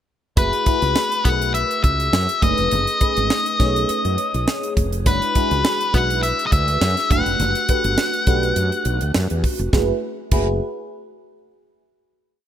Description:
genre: polished 1980s jazz-funk pop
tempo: 103 BPM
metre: 4/4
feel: swing 54% on 16ths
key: F# minor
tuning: A4 = 440 Hz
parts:
  - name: octave-fuzz lead guitar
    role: melody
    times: 0.4-9.1 s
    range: B4 to F#5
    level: -21 LUFS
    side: left 2 dB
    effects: distortion
  - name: FM electric piano with soft pad layer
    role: accompaniment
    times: 0.4-10.6 s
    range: G#3 to C#5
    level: -24 LUFS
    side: equal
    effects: phaser, lush chorus
  - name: woody fretless electric bass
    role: bass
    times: 0.4-10.6 s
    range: E#1 to F#2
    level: -22 LUFS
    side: equal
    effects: none
  - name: tight funk drum kit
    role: drums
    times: 0.4-10.5 s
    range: crash cymbal, hi-hat, kick drum, snare drum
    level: -21 LUFS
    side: right 1 dB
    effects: none
room: light reverb, small room ambience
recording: bright 1980s-style digital production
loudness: -17 LUFS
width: side -10 dB against mid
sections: 0.4-9.7 verse; 9.7-12.1 final chord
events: none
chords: 0.4 F#m11; 2.4 B13; 5.1 E9/F#; 7.1 Gmaj9; 9.7 F#m11

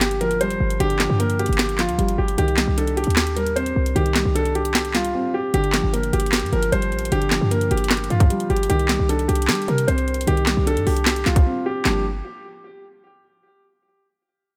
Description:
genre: hip hop, trap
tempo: 152 BPM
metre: 4/4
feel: half-time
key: G minor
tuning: A4 = 441 Hz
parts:
  - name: warm concert grand piano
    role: melody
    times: 0.0-12.0 s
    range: F4 to C5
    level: -26 LUFS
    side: equal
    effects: low-pass filter, digital delay
  - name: felt-muted upright piano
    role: accompaniment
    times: 0.0-12.0 s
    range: D3 to D4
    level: -29 LUFS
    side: equal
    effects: low-pass filter
  - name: short 808-style bass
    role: bass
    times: 0.0-12.2 s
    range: G1 to G3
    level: -25 LUFS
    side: equal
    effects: none
  - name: trap drum kit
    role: drums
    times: 0.0-11.9 s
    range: handclaps, hi-hat, kick drum, snare drum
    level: -24 LUFS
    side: equal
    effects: none
room: studio ambience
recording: none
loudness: -20 LUFS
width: mono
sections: 0.0-5.5 A section; 5.5-11.9 B section; 11.9-13.4 C section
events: break 5.1-5.5, 11.5-11.9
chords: 0.0 Gm7; 2.4 Cmadd9; 5.5 Gm7; 8.7 Cmadd9; 11.9 Gm7

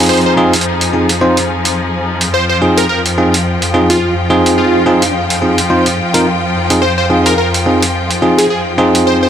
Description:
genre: glitch hop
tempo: 107 BPM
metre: 4/4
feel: swing 58% on 16ths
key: F minor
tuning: A4 = 440 Hz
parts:
  - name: clear studio string section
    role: sustained chords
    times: 0.0-9.3 s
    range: F2 to G5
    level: -15 LUFS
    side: left 1 dB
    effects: vintage 12-bit sampler grit
  - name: bell-like tine electric piano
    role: stabs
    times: 0.0-9.3 s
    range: C4 to C5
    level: -13 LUFS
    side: equal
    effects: ping-pong delay
  - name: electronic hi-hat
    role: drums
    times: 0.0-9.0 s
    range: none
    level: -16 LUFS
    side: right 2 dB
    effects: overdrive
  - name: plucky unison lead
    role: melody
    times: 0.1-9.3 s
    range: F4 to C5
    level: -16 LUFS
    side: equal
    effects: phaser, ping-pong delay
room: moderate lush hall reverb, RT60 2.3 s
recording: none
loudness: -10 LUFS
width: side -9 dB against mid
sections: 0.0-9.3 A section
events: none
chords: 0.0 Fm7

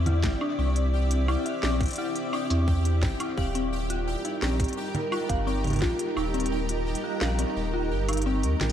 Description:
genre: IDM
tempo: 86 BPM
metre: 4/4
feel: straight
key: unclear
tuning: A4 = 440 Hz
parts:
  - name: granular cloud pad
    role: sustained chords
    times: 0.0-8.7 s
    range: G3 to D5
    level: -31 LUFS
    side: right 1 dB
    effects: built-in reverb, sidechain pumping
  - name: warm sub bass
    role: bass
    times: 0.0-8.7 s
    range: Eb1 to E2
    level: -26 LUFS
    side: equal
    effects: none
  - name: pulsing gated texture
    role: texture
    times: 0.0-8.7 s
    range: G4 to G5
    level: -37 LUFS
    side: right 3 dB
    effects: chorus, built-in reverb
  - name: dark detuned synth bell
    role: arpeggios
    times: 0.1-8.4 s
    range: C4 to F5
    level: -32 LUFS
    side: left 4 dB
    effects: chorus, phaser, vintage 12-bit sampler grit, tape echo
  - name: organic electronic drum kit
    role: drums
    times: 0.1-8.7 s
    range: congas, hi-hat, snare drum, woodblock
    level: -33 LUFS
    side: right 1 dB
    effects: none
  - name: electronic kick drum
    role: drums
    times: 0.2-6.0 s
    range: none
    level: -29 LUFS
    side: equal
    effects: none
room: light reverb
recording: dark, warm production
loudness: -24 LUFS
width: side -10 dB against mid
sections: 0.0-8.7 A section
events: kick drops out 6.2-8.7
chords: 0.0 Cadd9; 3.4 Eb

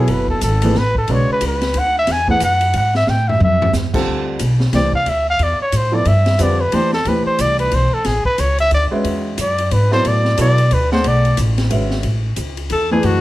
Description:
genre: modal jazz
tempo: 181 BPM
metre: 3/4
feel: swing 62% on 8ths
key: B dorian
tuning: A4 = 442 Hz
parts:
  - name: mellow trumpet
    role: melody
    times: 0.0-11.4 s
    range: G#4 to G#5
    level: -17 LUFS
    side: equal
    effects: none
  - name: warm concert grand piano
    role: accompaniment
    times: 0.0-13.2 s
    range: C#3 to F#5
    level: -20 LUFS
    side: equal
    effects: none
  - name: upright bass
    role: bass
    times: 0.0-13.2 s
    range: F#1 to B2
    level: -18 LUFS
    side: equal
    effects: none
  - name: open jazz drum kit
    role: drums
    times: 0.1-13.1 s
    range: crash cymbal, hi-hat, kick drum, ride cymbal, snare drum, toms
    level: -24 LUFS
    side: left 1 dB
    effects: none
  - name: bright alto saxophone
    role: second line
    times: 12.7-13.2 s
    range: F#4 to A4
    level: -18 LUFS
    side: left 2 dB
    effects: none
room: light reverb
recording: none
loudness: -14 LUFS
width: side -16 dB against mid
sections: 0.0-4.1 A section; 4.1-12.0 A section; 12.0-13.2 A section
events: trumpet solo 0.0-12.0; drum fill 3.1-3.7; alto saxophone solo 12.0-13.2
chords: 0.0 B13sus4; 3.1 A5; 4.1 D13sus4; 8.1 E13sus4; 12.0 F#m9

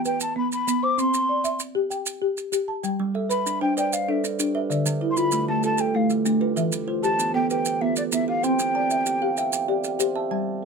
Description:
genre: southern african traditional, mbira-style interlocking cycle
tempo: 129 BPM (dotted quarters)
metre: 12/8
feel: straight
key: unclear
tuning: A4 = 441 Hz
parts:
  - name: mellow hollow jazz flute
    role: melody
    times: 0.0-10.0 s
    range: D5 to D6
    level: -25 LUFS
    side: equal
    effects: none
  - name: folk marimba with soft mallets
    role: arpeggios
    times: 0.0-10.7 s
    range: D3 to C6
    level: -24 LUFS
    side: left 1 dB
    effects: none
  - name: maracas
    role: percussion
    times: 0.1-10.1 s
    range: none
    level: -30 LUFS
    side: right 5 dB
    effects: none
  - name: kalimba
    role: arpeggios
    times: 3.0-10.6 s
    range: D3 to A5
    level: -28 LUFS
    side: right 7 dB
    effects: none
room: light reverb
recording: close, detailed microphones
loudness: -21 LUFS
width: side -5 dB against mid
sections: 0.0-10.3 A section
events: none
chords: 0.0 N.C.; 1.0 C; 2.8 G; 4.7 Dm; 6.6 Em; 8.4 C

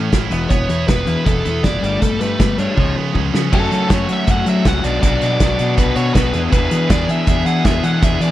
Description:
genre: indie rock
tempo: 159 BPM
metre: 4/4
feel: straight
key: unclear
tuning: A4 = 440 Hz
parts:
  - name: crunchy overdriven guitar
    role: riff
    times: 0.0-8.3 s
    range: E2 to G#4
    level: -21 LUFS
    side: left 6 dB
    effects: none
  - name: heavy high-gain guitar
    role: riff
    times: 0.0-8.3 s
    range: E#3 to G#4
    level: -24 LUFS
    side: right 8 dB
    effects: distortion, wide subtle chorus, slapback echo
  - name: fuzz fingered electric bass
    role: bass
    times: 0.0-8.3 s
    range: E1 to F#3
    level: -20 LUFS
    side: right 1 dB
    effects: overdrive
  - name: loose indie drum kit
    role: drums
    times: 0.1-8.3 s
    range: crash cymbal, hi-hat, kick drum, snare drum, toms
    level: -17 LUFS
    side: equal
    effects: none
  - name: biting lead guitar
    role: melody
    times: 0.5-8.3 s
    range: A4 to F#5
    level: -22 LUFS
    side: equal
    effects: overdrive, slapback echo
room: little or no reverb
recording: none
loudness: -14 LUFS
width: side -14 dB against mid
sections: 0.0-3.5 A section; 3.5-8.3 B section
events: drum fill 2.8-3.5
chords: 0.3 Esus4; 1.8 Gsus2; 2.8 C#7; 3.5 F#m; 4.8 Bm; 6.3 E5

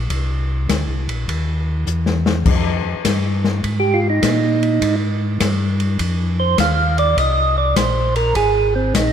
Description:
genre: soul jazz organ trio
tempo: 102 BPM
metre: 4/4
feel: swing 67% on 8ths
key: F dorian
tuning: A4 = 440 Hz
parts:
  - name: mellow tonewheel organ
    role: bass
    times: 0.0-9.1 s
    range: Ab1 to Bb2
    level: -19 LUFS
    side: left 1 dB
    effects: chorus vibrato, slow rotary speaker
  - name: open jazz drum kit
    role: drums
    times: 0.1-9.1 s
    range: crash cymbal, hi-hat, kick drum, ride cymbal, snare drum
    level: -22 LUFS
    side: left 3 dB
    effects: none
  - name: percussive tonewheel organ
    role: melody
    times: 3.8-9.1 s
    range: C4 to F5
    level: -17 LUFS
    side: right 4 dB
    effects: slow rotary speaker
room: light reverb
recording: none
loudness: -15 LUFS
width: side -8 dB against mid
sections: 0.0-2.5 A section; 2.5-9.1 B section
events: drum fill 1.9-2.5; tonewheel organ solo 2.5-9.1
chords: 0.1 C7#9; 2.5 Fm9

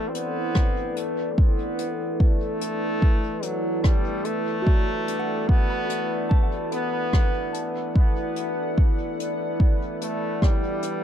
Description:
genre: ambient dub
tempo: 73 BPM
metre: 4/4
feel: swing 57% on 16ths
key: unclear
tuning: A4 = 440 Hz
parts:
  - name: brilliant trombone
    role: melody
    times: 0.0-11.0 s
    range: F#3 to C4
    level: -30 LUFS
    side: equal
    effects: analog delay
  - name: deep dark ambient pad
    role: sustained chords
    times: 0.0-11.0 s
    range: E4 to F#5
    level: -28 LUFS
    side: left 1 dB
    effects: chorus, built-in reverb
  - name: soft synth bell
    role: arpeggios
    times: 0.0-11.0 s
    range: F#4 to B5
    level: -35 LUFS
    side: right 2 dB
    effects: chorus, phaser, analog delay
  - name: jazz brush drum kit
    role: drums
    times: 0.1-11.0 s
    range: hi-hat, rim click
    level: -35 LUFS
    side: left 1 dB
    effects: dub echo
  - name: electronic kick drum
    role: drums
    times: 0.6-10.6 s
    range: none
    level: -19 LUFS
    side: equal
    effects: overdrive
room: light reverb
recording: echo-heavy mix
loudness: -21 LUFS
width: side -9 dB against mid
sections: 0.0-11.0 A section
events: none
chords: 0.0 E7sus2

